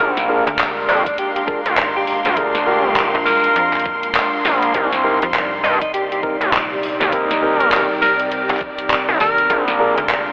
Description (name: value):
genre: glitch hop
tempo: 101 BPM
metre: 4/4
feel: swing 60% on 16ths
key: C minor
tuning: A4 = 440 Hz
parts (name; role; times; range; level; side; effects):
- warm tenor saxophone; melody; 0.0-9.6 s; D4 to Bb4; -23 LUFS; equal; diffuse ambient delay
- warbly tape-like pad; sustained chords; 0.0-10.3 s; C3 to Eb4; -33 LUFS; equal; chorus, built-in reverb, sidechain pumping
- tine electric piano; stabs; 0.0-10.0 s; Ab3 to Bb4; -26 LUFS; equal; sidechain pumping, diffuse ambient delay
- gritty driven synth bass; bass; 0.0-9.9 s; Bb1 to G2; -20 LUFS; equal; overdrive
- warm studio string section; texture; 0.0-10.3 s; C4 to C6; -26 LUFS; equal; sidechain pumping
- pop drum kit; drums; 0.2-10.2 s; handclaps, hi-hat, snare drum; -24 LUFS; equal; overdrive
- slap-like FM bass; bass; 0.5-10.3 s; Ab1 to F2; -27 LUFS; equal; none
- electronic kick drum; drums; 1.1-9.6 s; none; -31 LUFS; equal; overdrive
room: wet huge ambient reverb, RT60 9.2 s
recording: dreamy mix soaked in reverb, telephone sound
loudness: -17 LUFS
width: mono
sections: 0.0-10.3 A section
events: none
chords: 0.0 Bb7; 4.7 Cm7; 9.5 Bb7